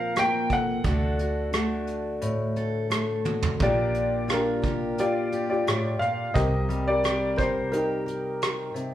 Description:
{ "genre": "acoustic folk-pop ballad", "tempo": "87 BPM", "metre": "4/4", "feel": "straight", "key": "unclear", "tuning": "A4 = 440 Hz", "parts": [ { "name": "dark upright piano", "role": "melody", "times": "0.0-8.9 s", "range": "D4 to G5", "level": "-26 LUFS", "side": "left 1 dB", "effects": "plate reverb" }, { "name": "fingerpicked steel-string acoustic guitar", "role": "accompaniment", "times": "0.0-8.9 s", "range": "A2 to Bb4", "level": "-28 LUFS", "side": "left 1 dB", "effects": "none" }, { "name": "vintage muted fingered electric bass", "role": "bass", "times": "0.0-8.9 s", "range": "Bb1 to D2", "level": "-30 LUFS", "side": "right 1 dB", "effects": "none" }, { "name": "soft brush drum kit", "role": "drums", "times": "0.2-8.9 s", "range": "hi-hat, kick drum, rim click, toms", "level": "-29 LUFS", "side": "right 2 dB", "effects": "none" } ], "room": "wet large studio reverb, RT60 0.9 s", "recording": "heard from further back in the room", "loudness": "-23 LUFS", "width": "side -12 dB against mid", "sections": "0.0-3.6 A section; 3.6-8.9 B section", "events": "drum fill 3.3-3.6", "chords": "0.0 Bbsus2; 0.8 D; 3.6 Bb6; 6.4 Cm7" }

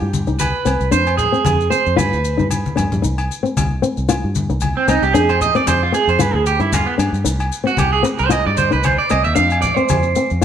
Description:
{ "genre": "highlife guitar band", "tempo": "114 BPM", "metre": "4/4", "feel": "swing 54% on 16ths", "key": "C harmonic minor", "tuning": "A4 = 440 Hz", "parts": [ { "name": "flamenco guitar", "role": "accompaniment", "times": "0.0-10.4 s", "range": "C4 to F4", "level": "-20 LUFS", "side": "left 5 dB", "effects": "none" }, { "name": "fingered electric bass", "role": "bass", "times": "0.0-10.4 s", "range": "C2 to G2", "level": "-20 LUFS", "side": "equal", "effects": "none" }, { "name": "congas", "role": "percussion", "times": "0.1-10.2 s", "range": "none", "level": "-23 LUFS", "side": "left 3 dB", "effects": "none" }, { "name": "maracas", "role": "percussion", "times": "0.1-10.4 s", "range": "none", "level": "-30 LUFS", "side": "left 7 dB", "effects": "none" }, { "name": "electric guitar at the edge of break-up", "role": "arpeggios", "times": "0.4-10.3 s", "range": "B3 to F5", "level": "-17 LUFS", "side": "right 5 dB", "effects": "spring reverb" }, { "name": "agogo bells", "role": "percussion", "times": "0.4-10.4 s", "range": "none", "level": "-28 LUFS", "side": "left 2 dB", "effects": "none" } ], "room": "moderate studio reverb, RT60 0.8 s", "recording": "band playing live in one room", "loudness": "-14 LUFS", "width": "side -9 dB against mid", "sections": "0.0-10.4 A section", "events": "clean electric guitar solo 0.0-10.4; drum fill 2.4-3.0", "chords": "0.0 Cm; 0.9 Fm; 2.0 G; 3.0 Cm; 5.1 F5; 6.2 G5; 7.3 Cm; 9.4 F5" }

